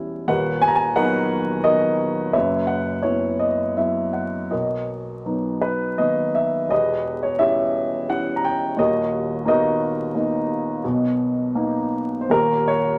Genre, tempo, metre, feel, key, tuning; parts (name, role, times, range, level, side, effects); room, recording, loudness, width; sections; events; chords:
classical, lyrical solo piano; 78-90 BPM; 3/4; rubato; B major; A4 = 442 Hz
dark baby grand piano; solo; 0.0-13.0 s; D#1 to A#5; -22 LUFS; equal
moderate studio ambience, RT60 0.5 s; vinyl crackle; -22 LUFS; mono
0.0-13.0 A section
0.3 Bmaj7/D#; 2.3 F#7sus4; 4.5 Bmaj7; 6.7 Em6; 8.8 Bmaj7/D#; 10.8 Bmaj7; 12.3 D#7